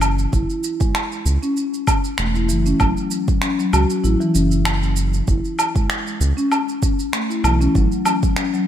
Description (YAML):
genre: organic downtempo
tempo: 97 BPM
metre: 4/4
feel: swing 54% on 16ths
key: F# minor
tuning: A4 = 441 Hz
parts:
  - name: round analog bass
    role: bass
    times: 0.0-7.9 s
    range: E1 to C#2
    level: -19 LUFS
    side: equal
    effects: none
  - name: electronic woodblock, shaker and finger snaps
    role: drums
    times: 0.0-8.7 s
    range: none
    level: -23 LUFS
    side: right 1 dB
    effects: none
  - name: marimba with soft mallets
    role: arpeggios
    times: 0.3-8.7 s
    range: E3 to F#4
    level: -21 LUFS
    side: left 2 dB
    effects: digital delay
  - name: electronic kick drum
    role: drums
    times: 0.3-8.3 s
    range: none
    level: -20 LUFS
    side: right 1 dB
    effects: none
room: moderate lush hall reverb, RT60 2.0 s, digital ambience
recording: big arena sound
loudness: -16 LUFS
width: side -10 dB against mid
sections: 0.0-8.7 A section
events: none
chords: 0.0 F#7(no3); 7.7 G#7(no3)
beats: | 0.33 0.94 1.56 2.18 | 2.80 3.42 4.04 4.66 | 5.28 5.89 6.51 7.13 | 7.75 8.37